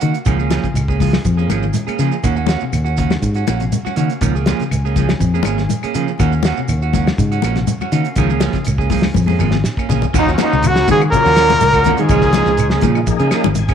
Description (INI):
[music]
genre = afrobeat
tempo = 122 BPM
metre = 4/4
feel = straight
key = Eb dorian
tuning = A4 = 437 Hz
[part]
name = clean electric guitar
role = arpeggios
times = 0.0-13.6 s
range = C3 to F3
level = -24 LUFS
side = left 10 dB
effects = phaser
[part]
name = clean electric guitar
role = stabs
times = 0.0-13.7 s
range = F3 to Ab4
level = -21 LUFS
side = right 10 dB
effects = none
[part]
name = fingered electric bass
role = bass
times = 0.0-13.7 s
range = Ab1 to Eb3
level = -18 LUFS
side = equal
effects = none
[part]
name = cloth-damped thuddy drum kit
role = drums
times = 0.0-13.7 s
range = crash cymbal, hi-hat, kick drum, snare drum, toms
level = -21 LUFS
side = equal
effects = none
[part]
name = shekere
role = percussion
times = 0.0-13.7 s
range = none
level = -24 LUFS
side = right 6 dB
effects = none
[part]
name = claves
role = percussion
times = 0.3-13.7 s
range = none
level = -34 LUFS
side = left 13 dB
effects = none
[part]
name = congas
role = percussion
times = 0.3-13.7 s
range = none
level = -22 LUFS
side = left 11 dB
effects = none
[part]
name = overdriven tonewheel organ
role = accompaniment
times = 10.1-13.7 s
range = Gb3 to Ab5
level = -25 LUFS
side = left 12 dB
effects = slow rotary speaker, chorus vibrato
[part]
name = clear trumpet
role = melody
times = 10.2-12.9 s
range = Eb4 to Bb4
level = -15 LUFS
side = equal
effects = none
[part]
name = raspy alto saxophone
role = second line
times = 10.2-12.9 s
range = Eb4 to Bb4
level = -21 LUFS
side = right 11 dB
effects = none
[part]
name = raspy baritone saxophone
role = second line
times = 10.2-12.9 s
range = Eb2 to Bb2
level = -24 LUFS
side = left 10 dB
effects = none
[sound]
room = moderate spring reverb, RT60 2.3 s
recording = 1960s-style stereo with parts hard left and right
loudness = -13 LUFS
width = side -8 dB against mid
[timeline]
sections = 0.0-10.1 A section; 10.1-13.7 B section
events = drum fill 9.2-10.1; tonewheel organ fill 13.3-13.7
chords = 0.3 Db6; 2.2 Ebm7; 4.2 Db6; 6.2 Ebm7; 8.2 Db6; 10.1 Ebm7; 12.1 Db6